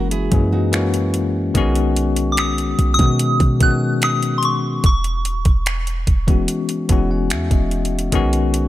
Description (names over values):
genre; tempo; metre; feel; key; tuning
contemporary R&B; 73 BPM; 4/4; straight; B major; A4 = 445 Hz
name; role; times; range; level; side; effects
bell-like tine electric piano; accompaniment; 0.0-8.7 s; D#3 to G#5; -20 LUFS; left 4 dB; medium stereo tremolo
nylon-string guitar; arpeggios; 0.0-0.9 s; D#4 to A#4; -28 LUFS; right 8 dB; tape echo
clean 808-style bass; bass; 0.0-8.7 s; D#1 to B2; -20 LUFS; right 1 dB; none
smooth R&B drum kit; drums; 0.1-8.7 s; finger snaps, hi-hat, kick drum; -19 LUFS; right 1 dB; none
soft synth bell; melody; 2.3-7.7 s; C6 to F#6; -22 LUFS; equal; chorus, phaser, tape echo
room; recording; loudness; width
little or no reverb; none; -15 LUFS; side -14 dB against mid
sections
0.0-8.7 A section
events
tine electric piano fill 6.5-8.1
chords
0.0 F#7; 1.6 B69; 4.8 E69; 8.1 B69